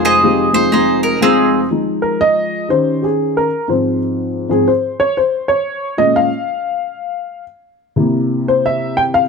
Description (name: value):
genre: gospel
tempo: 121 BPM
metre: 4/4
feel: swing 63% on 8ths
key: F minor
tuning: A4 = 440 Hz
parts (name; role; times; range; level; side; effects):
- mandolin; melody; 0.0-1.7 s; C4 to Eb5; -14 LUFS; right 2 dB; none
- dark upright piano; accompaniment; 0.0-9.3 s; F1 to G5; -14 LUFS; left 1 dB; none
room: moderate echo chamber reverb, RT60 1.8 s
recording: none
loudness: -13 LUFS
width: side -5 dB against mid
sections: 0.0-1.7 A section; 1.7-9.3 B section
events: upright piano solo 1.7-9.3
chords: 0.0 Fm7; 2.7 Eb7; 3.7 Ab6; 5.7 Bbm7; 7.7 C7